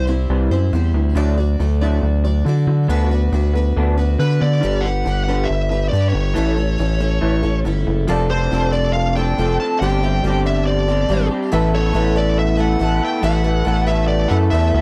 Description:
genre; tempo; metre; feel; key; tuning
folk rock and heartland rock; 139 BPM; 4/4; straight; unclear; A4 = 437 Hz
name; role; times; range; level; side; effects
smooth overdriven lead guitar; melody; 0.0, 4.2-14.8 s; B4 to A5; -25 LUFS; equal; none
picked plugged-in twelve-string acoustic guitar; accompaniment; 0.0-14.8 s; A2 to D5; -28 LUFS; equal; none
electric guitar through a small old amp; riff; 0.0-14.8 s; G2 to A4; -26 LUFS; equal; analog chorus
gritty driven synth bass; bass; 0.0-14.8 s; F1 to D3; -20 LUFS; equal; none
warm baby grand piano; accompaniment; 8.1-14.8 s; F4 to F#5; -32 LUFS; equal; none
room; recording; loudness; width
little or no reverb; dry, close 1970s-style studio recording; -18 LUFS; mono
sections
0.0-8.1 A section; 8.1-14.8 B section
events
none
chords
0.0 C; 1.2 D; 2.9 Bm/D; 4.6 G; 6.4 A; 8.1 F6; 9.8 Csus2/G; 11.5 Asus2

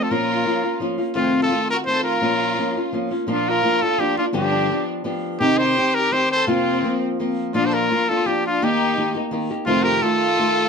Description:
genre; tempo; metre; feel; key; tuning
mexican folk, mariachi; 169 BPM; 3/4; straight; Bb harmonic minor, Bb major from 3.3 s; A4 = 439 Hz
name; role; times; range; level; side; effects
clear trumpet; melody; 0.0-10.7 s; F4 to C5; -21 LUFS; left 2 dB; none
warm studio violin section; second line; 0.0-10.7 s; C4 to A4; -25 LUFS; right 2 dB; none
flamenco guitar; accompaniment; 0.0-10.7 s; F2 to G4; -22 LUFS; left 1 dB; none
room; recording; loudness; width
light reverb; close, detailed microphones; -18 LUFS; side -5 dB against mid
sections
0.0-3.3 A section; 3.3-10.7 B section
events
none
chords
0.1 Bbm; 1.1 F7; 2.2 Bbm; 3.3 Bb; 4.4 G7; 5.4 Cm; 6.5 Fsus4; 7.6 Bb; 8.6 Eb; 9.7 F7

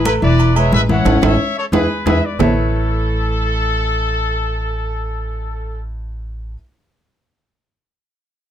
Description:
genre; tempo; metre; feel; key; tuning
latin, salsa; 179 BPM; 4/4; straight; A major; A4 = 440 Hz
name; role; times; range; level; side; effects
clear trumpet section; melody; 0.0-5.8 s; E4 to F#5; -21 LUFS; left 2 dB; none
upright bass; bass; 0.0-6.5 s; E1 to E2; -19 LUFS; right 1 dB; none
clear baby grand piano; accompaniment; 0.1-6.5 s; E3 to E5; -20 LUFS; left 2 dB; none
agogo bells and timbales; percussion; 0.1-2.5 s; none; -20 LUFS; right 6 dB; none
congas; percussion; 0.1-2.5 s; none; -21 LUFS; left 1 dB; none
room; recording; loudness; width
light reverb; close, detailed microphones; -14 LUFS; side -10 dB against mid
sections
0.0-2.4 A section; 2.4-5.1 B section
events
band accent 1.1-2.4; drum fill 1.4-2.4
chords
0.0 E; 1.1 A; 1.7 E; 2.4 Aadd9

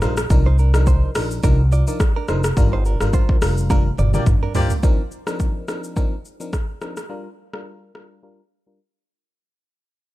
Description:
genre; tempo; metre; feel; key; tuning
afrobeats; 106 BPM; 4/4; swing 55% on 16ths; G minor; A4 = 440 Hz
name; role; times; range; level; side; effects
FM electric piano; accompaniment; 0.0-8.8 s; F3 to Bb4; -28 LUFS; left 2 dB; chorus, low-pass filter
direct-recorded clean electric guitar; riff; 0.0-4.7 s; D4 to D5; -30 LUFS; right 8 dB; digital delay
upright bass; bass; 0.0-4.7 s; F1 to G2; -18 LUFS; equal; none
deep house drum kit; drums; 0.0-8.1 s; hi-hat, kick drum, rim click, shaker, toms; -19 LUFS; equal; overdrive
clear horn section; second line; 4.1-4.7 s; Bb3 to D5; -29 LUFS; left 5 dB; none
room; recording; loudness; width
little or no reverb; none; -16 LUFS; side -16 dB against mid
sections
0.0-4.8 A section; 4.8-9.4 B section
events
band accent 2.6-4.8; drum fill 3.7-4.8; fade-out 4.8-9.4; filter sweep on FM electric piano 4.8-9.4; break 8.8-9.4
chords
0.3 Cm11; 2.6 Gm7; 4.8 Cm11; 7.1 Gm7

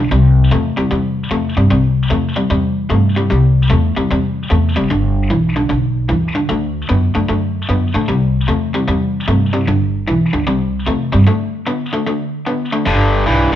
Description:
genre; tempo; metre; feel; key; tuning
electric blues shuffle; 151 BPM; 4/4; swing 65% on 8ths; unclear; A4 = 440 Hz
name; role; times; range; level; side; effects
overdriven electric guitar; riff; 0.0-13.6 s; G2 to B3; -16 LUFS; left 1 dB; none
upright bass; bass; 0.0-13.6 s; F1 to A2; -15 LUFS; equal; none
room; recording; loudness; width
light reverb; band playing live in one room; -13 LUFS; side -11 dB against mid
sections
0.0-12.9 A section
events
break 11.3-12.9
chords
0.1 C; 4.9 G; 6.5 D; 8.1 C; 9.7 G; 10.5 C; 11.3 D5; 12.9 G

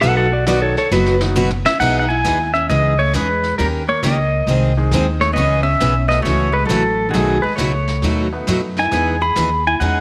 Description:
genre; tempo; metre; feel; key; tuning
country, western swing; 135 BPM; 4/4; swing 67% on 8ths; E major; A4 = 441 Hz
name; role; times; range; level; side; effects
clean lap steel guitar; second line; 0.0-1.2 s; F#4 to F#5; -21 LUFS; equal; none
picked steel-string acoustic guitar; accompaniment; 0.0-10.0 s; B2 to A#4; -23 LUFS; equal; none
upright bass; bass; 0.0-10.0 s; F#1 to F#2; -22 LUFS; equal; none
vintage brush drum kit; drums; 0.0-10.0 s; brushed snare drum, crash cymbal, hi-hat, kick drum, snare drum, toms; -31 LUFS; equal; none
clear upright piano; accompaniment; 0.5-9.2 s; B2 to D#5; -30 LUFS; equal; none
pedal steel guitar; melody; 1.7-10.0 s; F#4 to B5; -20 LUFS; equal; none
hollow-body jazz guitar; second line; 1.7-10.0 s; D#3 to G#4; -28 LUFS; equal; none
room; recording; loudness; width
moderate echo chamber reverb, RT60 1.9 s, small room ambience; none; -17 LUFS; mono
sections
0.0-1.8 A section; 1.8-10.0 B section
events
electric slide guitar solo 0.0-1.8; drum fill 0.9-1.8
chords
0.0 B; 1.8 Emaj7; 2.7 C#madd9; 3.6 D#7; 4.5 G#; 5.4 C#m7; 6.3 A6/C#; 7.1 B7; 8.9 Emaj7

